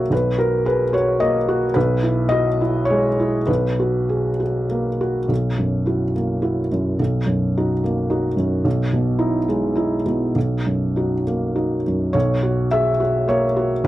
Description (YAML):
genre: classical, contemporary piece for solo felt piano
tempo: 98-111 BPM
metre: 3/4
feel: rubato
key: B major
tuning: A4 = 441 Hz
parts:
  - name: felt-muted upright piano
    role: solo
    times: 0.0-13.9 s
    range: B1 to E5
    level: -17 LUFS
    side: equal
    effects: none
room: light reverb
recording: dry, close 1970s-style studio recording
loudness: -18 LUFS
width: side -15 dB against mid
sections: 0.0-5.3 A section; 5.3-12.1 B section; 12.1-13.9 A section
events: none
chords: 0.0 B5; 1.8 Emaj7/B; 3.5 B5; 5.3 F#7/B; 7.0 Bmaj7; 8.7 Emaj7/B; 10.4 Bmaj7; 12.1 F#7/B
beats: | 0.11 0.67 1.21 | 1.76 2.31 2.88 | 3.48 4.09 4.70 | 5.30 5.86 6.42 | 6.99 7.55 8.11 | 8.65 9.20 9.77 | 10.35 10.95 11.55 | 12.14 12.71 13.28 | 13.84